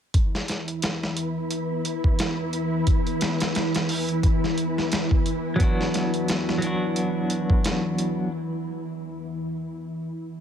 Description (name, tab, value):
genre	trip hop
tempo	88 BPM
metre	4/4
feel	swing 57% on 16ths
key	unclear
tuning	A4 = 436 Hz
part	string machine, cellos	sustained chords	0.1-10.4 s	E3 to E4	-27 LUFS	equal	ensemble chorus
part	dusty soul sampler-style drum kit	drums	0.1-8.2 s	hi-hat, kick drum, snare drum	-23 LUFS	equal	overdrive
part	wind-like tuned noise texture	texture	0.6-8.3 s	B3 to B4	-35 LUFS	right 1 dB	built-in reverb
part	clean electric guitar	accompaniment	5.6-8.3 s	F#3 to F#4	-26 LUFS	equal	tremolo, tape echo
room	light reverb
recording	none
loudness	-22 LUFS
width	side -9 dB against mid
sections	0.1-10.4 A section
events	break 8.3-10.4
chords	0.1 E5; 5.6 Bm